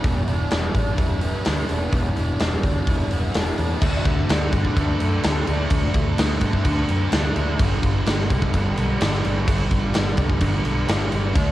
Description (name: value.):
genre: rock, shoegaze and dream pop.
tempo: 127 BPM.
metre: 4/4.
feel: straight.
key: G major.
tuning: A4 = 441 Hz.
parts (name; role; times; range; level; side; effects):
fuzz guitar; riff; 0.0-11.5 s; E2 to E4; -25 LUFS; equal; distortion, analog chorus.
vintage muted fingered electric bass; bass; 0.0-11.5 s; E1 to G2; -24 LUFS; equal; none.
big rock drum kit; drums; 0.0-11.5 s; crash cymbal, hi-hat, kick drum, snare drum; -22 LUFS; equal; cassette tape.
room: light reverb.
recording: home recording on cassette.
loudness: -19 LUFS.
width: side -14 dB against mid.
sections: 0.0-3.8 A section; 3.8-11.5 B section.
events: none.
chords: 0.0 Em7; 3.8 D5; 7.6 G5.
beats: | 0.05 0.52 0.99 1.46 | 1.93 2.41 2.88 3.35 | 3.82 4.29 4.76 5.23 | 5.70 6.17 6.65 7.12 | 7.59 8.06 8.53 9.00 | 9.47 9.95 10.42 10.89 | 11.36.